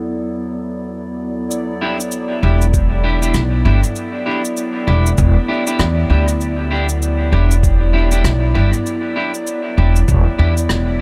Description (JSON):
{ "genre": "ambient dub", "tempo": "98 BPM", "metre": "4/4", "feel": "swing 60% on 16ths", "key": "E minor", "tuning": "A4 = 440 Hz", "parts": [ { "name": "warbly tape-like pad", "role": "sustained chords", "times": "0.0-11.0 s", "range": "E2 to D5", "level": "-24 LUFS", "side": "equal", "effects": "chorus, built-in reverb" }, { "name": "cabasa and rim click", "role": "drums", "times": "1.5-10.8 s", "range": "none", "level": "-29 LUFS", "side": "equal", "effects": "dub echo" }, { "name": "clean electric guitar", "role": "stabs", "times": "1.8-10.5 s", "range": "D4 to G4", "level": "-25 LUFS", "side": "equal", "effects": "lush chorus, dub echo" }, { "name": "upright bass", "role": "bass", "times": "2.4-11.0 s", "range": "E1 to E2", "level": "-16 LUFS", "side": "equal", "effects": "none" }, { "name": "electronic kick drum", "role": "drums", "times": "2.7-10.2 s", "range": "none", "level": "-19 LUFS", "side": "equal", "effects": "none" } ], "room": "studio reverb", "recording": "none", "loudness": "-16 LUFS", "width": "mono", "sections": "0.0-1.5 A section; 1.5-11.0 B section", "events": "none", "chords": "0.0 Dadd9/E; 1.5 Em7", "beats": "0.29 0.90 | 1.51 2.12 2.73 3.35 | 3.96 4.57 5.18 5.80 | 6.41 7.02 7.63 8.24 | 8.86 9.47 10.08 10.69" }